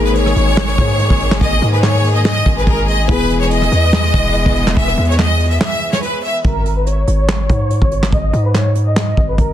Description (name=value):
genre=hip hop, trap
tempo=143 BPM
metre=4/4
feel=half-time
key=G# minor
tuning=A4 = 441 Hz
part: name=bright studio violin section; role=melody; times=0.0-9.5 s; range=A#4 to E5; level=-18 LUFS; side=left 1 dB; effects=low-pass filter, tape echo
part: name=dark concert grand piano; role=accompaniment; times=0.0-6.5 s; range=D#3 to G#4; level=-24 LUFS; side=left 5 dB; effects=low-pass filter
part: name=rich symphonic string section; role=sustained chords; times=0.0-6.4 s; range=D#3 to G#4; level=-22 LUFS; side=equal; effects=none
part: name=distorted 808-style bass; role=bass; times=0.0-9.5 s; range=E1 to G#2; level=-16 LUFS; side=equal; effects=distortion
part: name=soft brush drum kit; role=drums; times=0.2-9.5 s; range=handclaps, hi-hat, kick drum, rim click, snare drum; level=-17 LUFS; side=equal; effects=soft clipping on snare
room=small room ambience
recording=dense, heavily limited modern master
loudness=-12 LUFS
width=side -11 dB against mid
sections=0.0-6.4 A section; 6.4-9.5 B section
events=break 5.6-6.4; filter sweep 6.4-9.5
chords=0.0 G#sus2; 3.1 E; 6.4 G#sus4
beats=0.15 0.57 0.99 | 1.41 1.83 2.25 2.67 | 3.09 3.51 3.93 4.35 | 4.77 5.19 5.61 6.03 | 6.45 6.87 7.29 7.71 | 8.12 8.54 8.96 9.38